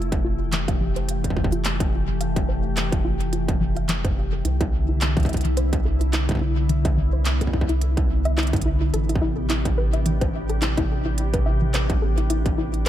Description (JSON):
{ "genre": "IDM", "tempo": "107 BPM", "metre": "4/4", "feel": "swing 56% on 16ths", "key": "F lydian", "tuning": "A4 = 438 Hz", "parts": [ { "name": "glassy FM pad", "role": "sustained chords", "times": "0.0-12.9 s", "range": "C3 to G4", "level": "-28 LUFS", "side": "left 1 dB", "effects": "ensemble chorus, built-in reverb" }, { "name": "soft round pluck", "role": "arpeggios", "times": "0.0-12.9 s", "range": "E3 to F5", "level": "-29 LUFS", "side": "left 1 dB", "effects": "chorus, cassette tape, tape echo" }, { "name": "round analog bass", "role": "bass", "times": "0.0-12.9 s", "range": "F1 to C2", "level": "-24 LUFS", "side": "equal", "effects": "none" }, { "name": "industrial drum kit", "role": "drums", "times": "0.0-12.9 s", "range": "handclaps, hi-hat, toms", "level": "-30 LUFS", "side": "right 1 dB", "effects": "tape echo" }, { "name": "electronic kick drum", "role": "drums", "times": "0.1-12.6 s", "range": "none", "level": "-24 LUFS", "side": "equal", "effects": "distortion" } ], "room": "digital ambience", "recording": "echo-heavy mix", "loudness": "-20 LUFS", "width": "side -12 dB against mid", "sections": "0.0-12.9 A section", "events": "none", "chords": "0.0 Fmaj9; 4.5 Cmaj9; 8.9 Am11", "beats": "0.53 1.09 1.65 | 2.21 2.77 3.33 3.89 | 4.45 5.01 5.57 6.13 | 6.69 7.25 7.82 8.38 | 8.94 9.50 10.06 10.62 | 11.18 11.74 12.30 12.86" }